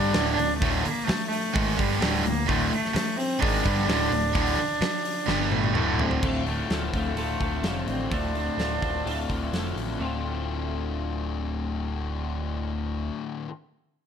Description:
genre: quiet-loud alternative rock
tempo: 128 BPM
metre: 4/4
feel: straight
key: D minor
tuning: A4 = 445 Hz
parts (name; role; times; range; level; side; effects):
- warm cello; melody; 0.0-9.5 s; G3 to D4; -28 LUFS; right 1 dB; tape echo
- fuzz guitar; riff; 0.0-13.5 s; D2 to F4; -32 LUFS; left 9 dB; distortion
- high-gain distorted guitar; riff; 0.0-6.2 s; D2 to G#3; -29 LUFS; right 11 dB; distortion
- overdriven electric guitar; riff; 0.0-6.2 s; D2 to G#3; -32 LUFS; equal; spring reverb
- overdriven picked electric bass; bass; 0.0-13.1 s; D1 to A1; -31 LUFS; equal; none
- big rock drum kit; drums; 0.1-9.9 s; crash cymbal, hi-hat, kick drum, snare drum, toms; -29 LUFS; equal; none
- twelve-string electric guitar; arpeggios; 6.2-13.5 s; D2 to F4; -34 LUFS; equal; analog chorus
room: light reverb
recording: none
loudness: -24 LUFS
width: side -8 dB against mid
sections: 0.0-6.2 A section; 6.2-10.0 B section; 10.0-13.8 C section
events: drum fill 5.3-6.2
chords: 0.0 D5; 5.3 G5; 5.8 D5; 6.2 Dm7

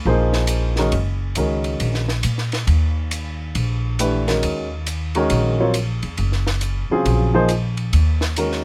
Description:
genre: modal jazz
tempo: 137 BPM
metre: 4/4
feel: swing 65% on 8ths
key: Eb dorian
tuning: A4 = 440 Hz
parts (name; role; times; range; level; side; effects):
- upright bass; bass; 0.0-8.6 s; Gb1 to Bb2; -22 LUFS; equal; none
- warm baby grand piano; accompaniment; 0.1-8.6 s; Db3 to Db5; -22 LUFS; equal; none
- compact cocktail drum kit; drums; 0.3-8.6 s; hi-hat, ride cymbal, snare drum; -30 LUFS; equal; none
room: little or no reverb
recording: close, detailed microphones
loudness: -20 LUFS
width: mono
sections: 0.0-8.6 A section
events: none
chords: 0.0 Ebm11

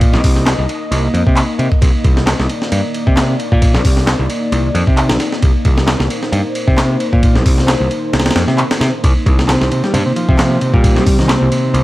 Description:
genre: breakbeat, breaks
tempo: 133 BPM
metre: 4/4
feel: swing 55% on 16ths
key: C minor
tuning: A4 = 440 Hz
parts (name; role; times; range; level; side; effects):
- deep dark ambient pad; sustained chords; 0.0-11.8 s; Bb3 to Eb5; -21 LUFS; equal; chorus, built-in reverb, sidechain pumping
- overdriven picked electric bass; bass; 0.0-11.8 s; C2 to C3; -15 LUFS; equal; none
- breakbeat sampler-style drum kit; drums; 0.0-11.8 s; hi-hat, kick drum, ride cymbal, snare drum; -14 LUFS; equal; none
- electronic handclaps; drums; 0.5-11.4 s; none; -22 LUFS; equal; none
- combo organ; riff; 9.5-11.8 s; C3 to G3; -16 LUFS; equal; spring reverb
room: little or no reverb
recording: dry, gritty hardware recording, vinyl crackle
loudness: -11 LUFS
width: side -17 dB against mid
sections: 0.0-11.8 A section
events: none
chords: 0.0 Cm9

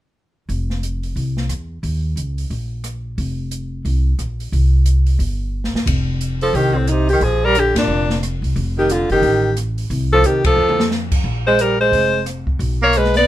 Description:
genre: jazz, small-group swing and bop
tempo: 178 BPM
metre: 4/4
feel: swing 62% on 8ths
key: F mixolydian from 5.9 s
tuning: A4 = 440 Hz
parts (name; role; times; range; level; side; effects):
- upright bass; bass; 0.5-13.2 s; F1 to F2; -19 LUFS; equal; none
- open jazz drum kit; drums; 0.5-13.2 s; crash cymbal, hi-hat, kick drum, ride cymbal, rim click, snare drum, toms; -24 LUFS; equal; none
- bright alto saxophone; melody; 6.4-13.3 s; C4 to D5; -16 LUFS; left 2 dB; none
- warm tenor saxophone; second line; 6.4-13.3 s; A2 to B3; -19 LUFS; right 4 dB; none
room: light reverb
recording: minimal, uncompressed stereo recording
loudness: -16 LUFS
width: side -13 dB against mid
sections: 0.5-5.9 A section; 5.9-13.3 B section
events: drum fill 5.5-5.9, 10.6-10.9; band accent 7.7, 10.4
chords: 0.5 F5; 1.8 Eb5; 3.2 F5; 4.5 C5; 5.9 F5; 7.2 Bb; 8.6 F9; 9.9 Cmadd11; 10.6 F; 11.3 Bbsus2; 12.6 N.C.

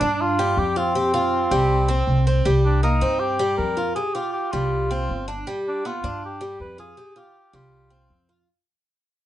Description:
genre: latin, Cuban son and guajira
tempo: 159 BPM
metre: 4/4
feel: straight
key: unclear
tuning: A4 = 441 Hz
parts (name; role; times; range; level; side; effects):
- mellow cor anglais; melody; 0.0-8.3 s; C4 to B4; -25 LUFS; left 1 dB; none
- Cuban tres; arpeggios; 0.0-8.5 s; G3 to G4; -24 LUFS; right 1 dB; none
- upright bass; bass; 0.0-8.4 s; G1 to G2; -23 LUFS; equal; none
room: wet small room reverb, RT60 0.5 s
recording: heard from further back in the room, nothing above 10.7 kHz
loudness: -19 LUFS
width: side -13 dB against mid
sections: 0.0-2.5 A section; 2.5-8.5 B section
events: fade-out 2.5-8.5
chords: 0.0 G7(no3); 0.9 Fsus2; 2.5 Cm7; 4.0 Fsus2; 5.5 G7; 7.0 Fsus2

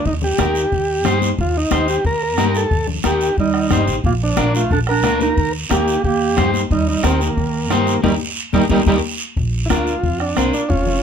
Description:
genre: latin, cumbia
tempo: 180 BPM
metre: 4/4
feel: straight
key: unclear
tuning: A4 = 440 Hz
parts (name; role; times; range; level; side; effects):
- combo organ; melody; 0.0-11.0 s; Bb3 to Bb4; -20 LUFS; right 1 dB; none
- upright bass; bass; 0.1-11.0 s; F1 to G2; -22 LUFS; right 1 dB; none
- bombo; percussion; 0.1-10.9 s; none; -23 LUFS; left 2 dB; none
- congas; percussion; 0.1-11.0 s; none; -24 LUFS; left 11 dB; none
- guiro; percussion; 0.1-11.0 s; none; -29 LUFS; right 6 dB; none
- electric guitar at the edge of break-up; accompaniment; 0.4-10.6 s; D4 to C5; -21 LUFS; left 3 dB; none
- breathy clarinet; second line; 3.4-9.0 s; Eb3 to Eb4; -21 LUFS; right 9 dB; none
room: light reverb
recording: none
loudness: -15 LUFS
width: side -7 dB against mid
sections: 0.0-9.4 A section; 9.4-11.0 B section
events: band accent 8.0-9.4; transistor combo organ solo 9.4-11.0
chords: 0.1 Eb; 4.0 Bb; 5.4 Eb; 9.4 Bb

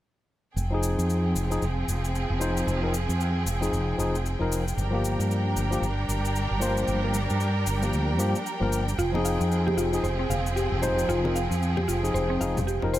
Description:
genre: organic downtempo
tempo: 114 BPM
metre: 4/4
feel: swing 60% on 16ths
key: F dorian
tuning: A4 = 440 Hz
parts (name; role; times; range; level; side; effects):
- rich studio string section; sustained chords; 0.6-13.0 s; F3 to G5; -30 LUFS; right 1 dB; none
- mellow fretless electric bass; bass; 0.6-13.0 s; F1 to G2; -27 LUFS; equal; none
- cabasa; drums; 0.6-13.0 s; none; -38 LUFS; left 4 dB; overdrive, studio reverb
- barky tine electric piano; accompaniment; 0.7-13.0 s; F3 to C5; -30 LUFS; left 2 dB; low-pass filter, digital delay
- mallet-like synth pluck; arpeggios; 9.0-13.0 s; C4 to F5; -29 LUFS; equal; chorus, digital delay
- congas; percussion; 9.2-12.9 s; none; -35 LUFS; left 3 dB; none
room: light reverb, small room ambience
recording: none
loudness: -24 LUFS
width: side -14 dB against mid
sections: 0.6-13.0 A section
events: none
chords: 0.6 Fm7; 4.8 Gm7; 9.0 Fm7

